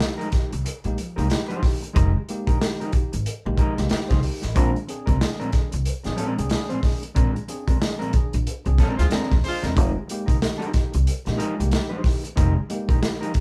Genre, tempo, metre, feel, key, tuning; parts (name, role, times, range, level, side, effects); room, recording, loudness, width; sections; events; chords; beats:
funk; 92 BPM; 4/4; swing 60% on 16ths; F dorian; A4 = 440 Hz
mellow electric guitar; accompaniment; 0.0-13.4 s; Ab3 to C5; -32 LUFS; equal
tine electric piano; stabs; 0.0-13.4 s; Bb2 to Ab4; -34 LUFS; equal; overdrive
crunchy breakbeat drum kit; drums; 0.0-13.4 s; hi-hat, kick drum, snare drum; -25 LUFS; equal
upright bass; bass; 0.3-13.4 s; E1 to D2; -26 LUFS; equal
warm horn section; second line; 9.0-9.7 s; Ab3 to C5; -30 LUFS; equal
light reverb; band playing live in one room; -23 LUFS; mono
0.0-13.4 A section
band accent 7.2-9.8
0.0 Fm11; 4.6 Bb9; 9.8 Fm11
0.01 0.66 1.31 | 1.96 2.61 3.26 3.91 | 4.56 5.21 5.87 6.52 | 7.17 7.82 8.47 9.12 | 9.77 10.42 11.07 11.72 | 12.38 13.03